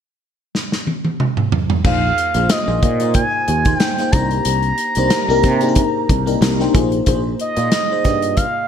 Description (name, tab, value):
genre	polished 1980s jazz-funk pop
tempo	92 BPM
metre	4/4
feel	swing 54% on 16ths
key	unclear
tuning	A4 = 440 Hz
part	modern studio drum kit	drums	0.5-8.5 s	crash cymbal, hi-hat, kick drum, snare drum, toms	-18 LUFS	equal	gated reverb
part	FM electric piano with soft pad layer	accompaniment	1.8-8.7 s	Bb3 to C5	-20 LUFS	left 3 dB	phaser, lush chorus
part	sustaining fretless electric bass	bass	1.8-8.4 s	Bb1 to C3	-19 LUFS	right 1 dB	lush chorus
part	expressive synth lead	melody	1.9-8.7 s	Eb5 to Bb5	-20 LUFS	right 1 dB	chorus
room	light reverb, small room ambience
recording	bright 1980s-style digital production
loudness	-14 LUFS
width	side -8 dB against mid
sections	0.0-1.8 A section; 1.8-7.1 B section; 7.1-8.7 C section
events	drum fill 0.5-1.8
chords	0.0 N.C.; 1.8 Bb7sus4; 4.1 Cm7; 6.7 Bb7sus4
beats	0.54 1.20 | 1.85 2.50 3.15 3.81 | 4.46 5.12 5.77 6.42 | 7.07 7.73 8.38